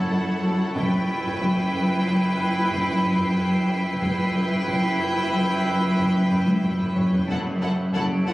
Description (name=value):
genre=cinematic, suspense film score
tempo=92 BPM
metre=5/4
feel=straight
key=unclear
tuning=A4 = 440 Hz
part: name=clear studio violin section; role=melody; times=0.0-8.3 s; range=F#5 to G5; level=-31 LUFS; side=right 1 dB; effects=none
part: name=rich studio violin section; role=second line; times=0.0-8.3 s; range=A4 to B4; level=-30 LUFS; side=equal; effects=none
part: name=rich studio viola section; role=accompaniment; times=0.0-8.3 s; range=E4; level=-32 LUFS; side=equal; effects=none
part: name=drifting glass-harmonics texture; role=sustained chords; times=0.0-8.3 s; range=A4 to G5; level=-32 LUFS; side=equal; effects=chorus, built-in reverb
part: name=clear studio cello section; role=bass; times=0.0-8.3 s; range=F#2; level=-25 LUFS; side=equal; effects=none
part: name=rich studio double bass section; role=bass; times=0.0-8.3 s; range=F#1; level=-29 LUFS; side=equal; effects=none
part: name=concert harp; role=texture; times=0.0-8.3 s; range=C#5 to F#6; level=-42 LUFS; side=left 2 dB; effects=none
part: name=chorused synth bass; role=riff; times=0.1-8.3 s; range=F#2 to F#3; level=-29 LUFS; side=equal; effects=none
part: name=taiko ensemble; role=drums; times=0.8-8.3 s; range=none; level=-30 LUFS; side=equal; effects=none
part: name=rich studio violin section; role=texture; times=0.8-8.3 s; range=C#5 to D7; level=-36 LUFS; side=equal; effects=none
room=wet concert hall reverb, RT60 2.1 s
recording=recorded on a phone in the room, club reverb, compression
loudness=-20 LUFS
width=side -18 dB against mid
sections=0.0-8.3 A section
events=drum fill 6.5-7.3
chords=0.0 F#m7; 0.8 Em/F#; 7.3 F#m7